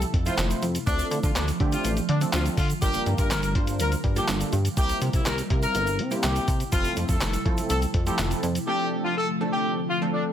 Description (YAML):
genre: dance-pop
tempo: 123 BPM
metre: 4/4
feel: straight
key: unclear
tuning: A4 = 440 Hz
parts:
  - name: funky polysynth comp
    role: accompaniment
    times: 0.0-10.3 s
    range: F3 to C5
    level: -31 LUFS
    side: right 2 dB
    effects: chorus, sidechain pumping
  - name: ethereal airy pad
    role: sustained chords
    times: 0.0-10.3 s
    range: C3 to F4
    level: -32 LUFS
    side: equal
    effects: ensemble chorus, built-in reverb, phaser, sidechain pumping
  - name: chorused synth bass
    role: bass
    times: 0.0-8.6 s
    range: F1 to D3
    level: -26 LUFS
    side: equal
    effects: sidechain pumping
  - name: lo-fi sampler-style drum kit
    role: drums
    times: 0.0-8.7 s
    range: handclaps, hi-hat, kick drum, snare drum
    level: -27 LUFS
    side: equal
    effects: none
  - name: egg shaker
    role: percussion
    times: 0.0-8.7 s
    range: none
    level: -38 LUFS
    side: right 8 dB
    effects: none
  - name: warm horn section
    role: melody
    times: 0.3-10.2 s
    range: D4 to Bb4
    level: -29 LUFS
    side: left 2 dB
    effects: sidechain pumping, tape echo
room: light reverb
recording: dense, heavily limited modern master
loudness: -22 LUFS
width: side -10 dB against mid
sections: 0.0-10.3 A section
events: silent gap 8.7-10.3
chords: 0.0 Fmaj7; 0.9 Dm7; 2.8 Gm7; 4.8 C7; 6.7 Fmaj7; 8.7 Dm7